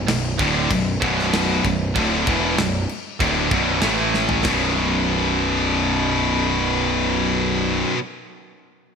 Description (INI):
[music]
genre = heavy metal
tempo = 96 BPM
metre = 4/4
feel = straight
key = B minor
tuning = A4 = 439 Hz
[part]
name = distorted electric guitar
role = riff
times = 0.0-8.0 s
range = B1 to A3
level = -26 LUFS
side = equal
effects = distortion
[part]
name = fuzz picked electric bass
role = bass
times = 0.0-7.8 s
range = B0 to A1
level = -26 LUFS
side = equal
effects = overdrive
[part]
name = heavy high-gain guitar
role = riff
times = 0.1-8.0 s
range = B1 to A3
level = -22 LUFS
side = left 10 dB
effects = distortion
[part]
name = heavy high-gain guitar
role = riff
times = 0.1-8.0 s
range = B1 to A3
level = -24 LUFS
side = right 9 dB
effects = distortion
[part]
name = tight metal drum kit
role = drums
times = 0.1-4.6 s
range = crash cymbal, kick drum, snare drum, toms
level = -25 LUFS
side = equal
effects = gated reverb
[sound]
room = moderate lush hall reverb, RT60 2.2 s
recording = bright 1980s-style digital production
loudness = -18 LUFS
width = side -6 dB against mid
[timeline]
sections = 0.0-4.5 A section; 4.5-6.9 B section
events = drum fill 4.1-4.5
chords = 0.0 Bm; 3.8 A5; 4.5 B5